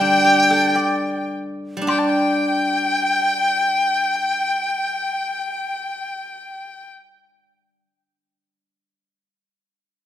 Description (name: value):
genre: chinese traditional, Chinese chamber ensemble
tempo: 51 BPM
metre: 2/4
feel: rubato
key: unclear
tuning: A4 = 440 Hz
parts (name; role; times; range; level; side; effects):
- bright reedy dizi; melody; 0.0-6.6 s; G5; -20 LUFS; right 1 dB; none
- clear erhu; second line; 0.0-6.9 s; G5 to A5; -23 LUFS; left 4 dB; none
- steel-string zither; accompaniment; 0.0-7.8 s; D3 to D5; -22 LUFS; equal; none
- woodblock; percussion; 0.7-2.4 s; none; -29 LUFS; left 3 dB; none
room: moderate recital hall reverb, RT60 1.6 s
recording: none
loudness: -17 LUFS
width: side -11 dB against mid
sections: 0.0-1.9 A section; 1.9-6.6 B section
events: slowing down 0.0-1.9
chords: none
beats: 0.76 | 1.89 3.08 | 4.26 5.44